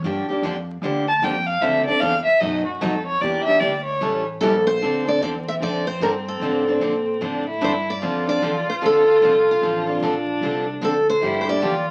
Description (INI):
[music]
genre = acoustic string swing (jazz manouche)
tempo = 150 BPM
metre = 4/4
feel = swing 63% on 8ths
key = D minor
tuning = A4 = 437 Hz
[part]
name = warm violin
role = second line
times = 0.0-11.9 s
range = C4 to A5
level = -26 LUFS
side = equal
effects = none
[part]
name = picked steel-string acoustic guitar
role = accompaniment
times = 0.0-11.7 s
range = B2 to A4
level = -26 LUFS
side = equal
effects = none
[part]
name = upright bass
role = bass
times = 0.0-11.9 s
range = A1 to Bb2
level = -34 LUFS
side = equal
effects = none
[part]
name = picked steel-string acoustic guitar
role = melody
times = 4.4-11.9 s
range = F4 to E5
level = -23 LUFS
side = equal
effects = none
[sound]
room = moderate studio reverb, RT60 0.9 s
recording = very old 78 rpm record, vinyl crackle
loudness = -21 LUFS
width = mono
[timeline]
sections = 0.0-4.8 A section; 4.8-11.9 B section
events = violin solo 0.0-4.8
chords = 0.0 Gm7; 1.6 Dm7; 2.4 B7; 3.2 Em7b5; 4.0 A7; 4.8 Dm7; 11.2 Gm7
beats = | 0.03 0.42 0.82 1.22 | 1.62 2.02 2.42 2.82 | 3.22 3.62 4.02 4.42 | 4.81 5.21 5.61 6.01 | 6.41 6.81 7.21 7.62 | 8.02 8.41 8.82 9.22 | 9.62 10.02 10.42 10.82 | 11.22 11.62